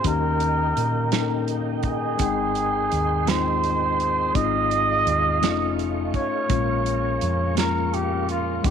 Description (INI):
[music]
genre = slow gospel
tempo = 56 BPM (dotted quarters)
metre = 6/8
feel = straight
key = unclear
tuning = A4 = 436 Hz
[part]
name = breathy trumpet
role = melody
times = 0.0-8.7 s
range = F4 to Eb5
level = -24 LUFS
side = right 2 dB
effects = none
[part]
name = tine electric piano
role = accompaniment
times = 0.0-8.7 s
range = Ab2 to G5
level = -27 LUFS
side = left 11 dB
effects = overdrive, fast stereo tremolo
[part]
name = mellow tonewheel organ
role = sustained chords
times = 0.0-8.7 s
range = Ab4 to C#6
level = -32 LUFS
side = right 10 dB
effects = fast rotary speaker, chorus vibrato
[part]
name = muted French horn section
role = sustained chords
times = 0.0-8.7 s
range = Db3 to Bb4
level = -38 LUFS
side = left 10 dB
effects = none
[part]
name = hollow-body short-scale fingered electric bass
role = bass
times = 0.0-8.7 s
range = F1 to Bb2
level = -27 LUFS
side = equal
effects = none
[part]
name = warm soul drum kit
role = drums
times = 0.0-8.7 s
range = hi-hat, kick drum, snare drum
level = -27 LUFS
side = right 4 dB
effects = none
[sound]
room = moderate spring reverb, RT60 2.0 s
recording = 1960s-style stereo with parts hard left and right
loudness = -20 LUFS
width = side -7 dB against mid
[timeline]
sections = 0.0-8.7 A section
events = none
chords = 0.0 Eb7; 2.2 Abmaj7; 4.4 Fm7/Ab; 5.4 Faug7; 6.5 Bbm7